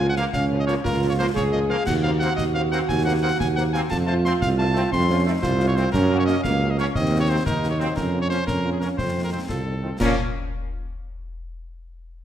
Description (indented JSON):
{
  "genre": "military-style march for wind band",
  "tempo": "118 BPM (dotted quarters)",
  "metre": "6/8",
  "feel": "straight",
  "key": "Bb minor",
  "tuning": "A4 = 443 Hz",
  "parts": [
    { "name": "mellow cornet", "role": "melody", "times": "0.0-10.1 s", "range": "Ab4 to C6", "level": "-27 LUFS", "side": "left 1 dB", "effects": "none" },
    { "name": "warm euphonium", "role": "second line", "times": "0.0-9.6 s", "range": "Bb3 to Ab4", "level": "-26 LUFS", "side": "right 4 dB", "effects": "none" },
    { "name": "mellow French horn section", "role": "accompaniment", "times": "0.0-10.1 s", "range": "F3 to C5", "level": "-32 LUFS", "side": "left 5 dB", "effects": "none" },
    { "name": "mellow tuba", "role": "bass", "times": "0.0-10.1 s", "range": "C2 to Bb2", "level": "-23 LUFS", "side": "right 1 dB", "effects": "none" },
    { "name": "clear trombone section", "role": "sustained chords", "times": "0.2-10.1 s", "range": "Eb3 to Db4", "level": "-33 LUFS", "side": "right 1 dB", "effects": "none" },
    { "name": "concert snare drum, concert bass drum and clash cymbals", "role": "drums", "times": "0.2-10.2 s", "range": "none", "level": "-32 LUFS", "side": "left 2 dB", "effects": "none" }
  ],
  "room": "wet scoring stage reverb, RT60 1.5 s",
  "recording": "none",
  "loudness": "-20 LUFS",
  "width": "side -10 dB against mid",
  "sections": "0.0-10.0 A section; 10.0-11.0 B section",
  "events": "none",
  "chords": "0.0 Bbm/Db; 1.9 Cm7b5/Eb; 3.9 F; 5.9 Gb; 7.0 Cm7b5/Eb; 8.0 Bbm/F; 9.0 F7; 10.0 Bbm"
}